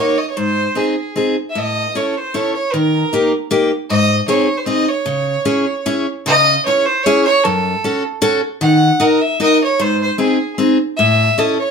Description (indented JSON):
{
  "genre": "alpine folk, alpine dance band",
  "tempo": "152 BPM",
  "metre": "3/4",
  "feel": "swing 54% on 8ths, rubato",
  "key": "C# harmonic minor",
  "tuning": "A4 = 440 Hz",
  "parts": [
    { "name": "rich fiddle", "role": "melody", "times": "0.0-11.7 s", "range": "G#4 to F#5", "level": "-16 LUFS", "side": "right 1 dB", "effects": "none" },
    { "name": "picked steel-string acoustic guitar", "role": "accompaniment", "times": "0.0-11.6 s", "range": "F#2 to A#4", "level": "-16 LUFS", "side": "left 1 dB", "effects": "none" }
  ],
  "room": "moderate studio reverb, RT60 0.6 s",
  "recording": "band playing live in one room",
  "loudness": "-13 LUFS",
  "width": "side -6 dB against mid",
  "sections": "0.0-6.3 A section; 6.3-11.7 A section",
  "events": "none",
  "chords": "0.4 G#; 1.6 A; 2.7 D#; 3.9 G#; 5.1 C#m; 7.4 F#m; 8.6 D#m; 9.8 G#; 11.0 A"
}